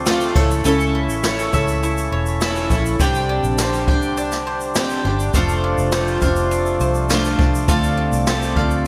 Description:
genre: acoustic pop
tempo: 102 BPM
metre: 4/4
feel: straight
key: unclear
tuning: A4 = 440 Hz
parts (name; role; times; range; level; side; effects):
- picked steel-string acoustic guitar; accompaniment; 0.0-8.9 s; C3 to D5; -23 LUFS; equal; double-tracked
- hand-pumped harmonium; sustained chords; 0.0-8.9 s; C3 to A4; -28 LUFS; equal; none
- bowl-back mandolin; arpeggios; 0.0-8.9 s; G3 to G5; -30 LUFS; equal; none
- vintage muted fingered electric bass; bass; 0.0-8.9 s; E1 to D2; -25 LUFS; equal; none
- jazz brush drum kit; drums; 0.1-8.8 s; crash cymbal, kick drum, shaker, snare drum; -24 LUFS; equal; gated reverb
room: moderate lush hall reverb, RT60 1.9 s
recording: bright 1980s-style digital production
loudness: -19 LUFS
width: mono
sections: 0.0-8.9 A section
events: none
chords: 0.4 A; 3.0 Csus2; 5.3 F6; 7.7 Dm7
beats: 0.06 | 0.65 1.24 1.82 2.41 | 3.00 3.58 4.17 4.75 | 5.34 5.93 6.51 7.10 | 7.69 8.27 8.86

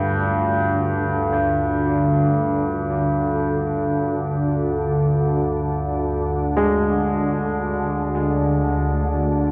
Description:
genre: dark ambient drone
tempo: free time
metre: none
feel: none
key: D minor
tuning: A4 = 436 Hz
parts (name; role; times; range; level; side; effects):
- warm grand piano; arpeggios; 0.0-9.5 s; G2 to G#3; -25 LUFS; equal; tape echo
- organ-like drone; drone; 0.0-9.5 s; D2 to D3; -23 LUFS; equal; ensemble chorus, built-in reverb
- bronze singing bowl; texture; 0.0-9.5 s; F4; -41 LUFS; equal; none
room: wet cathedral reverb, RT60 5.8 s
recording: none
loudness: -21 LUFS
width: mono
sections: 0.0-9.5 A section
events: none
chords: 0.0 Dm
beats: free time

